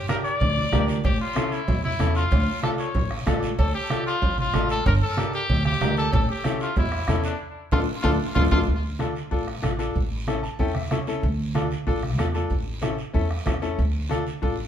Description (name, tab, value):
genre	latin, cumbia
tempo	188 BPM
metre	4/4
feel	straight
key	D harmonic minor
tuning	A4 = 440 Hz
part	bright trumpet	second line	0.0-8.6 s	D4 to D5	-27 LUFS	left 2 dB	tape echo
part	bright upright piano	accompaniment	0.1-14.5 s	C#4 to A5	-28 LUFS	left 3 dB	none
part	bombo	percussion	0.1-14.6 s	none	-27 LUFS	right 1 dB	none
part	congas	percussion	0.1-14.3 s	none	-30 LUFS	right 2 dB	none
part	guiro	percussion	0.1-14.7 s	none	-40 LUFS	right 4 dB	none
part	upright bass	bass	0.4-14.7 s	G1 to E2	-26 LUFS	equal	none
part	cowbell and timbales	percussion	0.4-8.6 s	none	-34 LUFS	right 2 dB	none
room	wet studio reverb, RT60 0.8 s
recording	heard from further back in the room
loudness	-21 LUFS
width	side -9 dB against mid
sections	0.0-8.7 A section; 8.7-14.7 B section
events	trumpet solo 0.0-8.7; band accent 7.4-8.7; drum fill 8.2-8.7; upright piano fill 10.3-11.2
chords	0.0 Gm; 1.0 A; 2.3 Dm; 4.9 Gm; 6.1 A7; 7.4 Dm; 10.0 A; 11.2 Dm; 12.5 A; 13.8 Dm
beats	0.09 0.41 0.72 | 1.04 1.36 1.68 2.00 | 2.31 2.63 2.95 3.27 | 3.59 3.90 4.22 4.54 | 4.86 5.18 5.49 5.81 | 6.13 6.45 6.77 7.08 | 7.40 7.72 8.04 8.36 | 8.68 8.99 9.31 9.63 | 9.95 10.27 10.59 10.91 | 11.23 11.55 11.87 12.19 | 12.51 12.83 13.14 13.46 | 13.78 14.10 14.42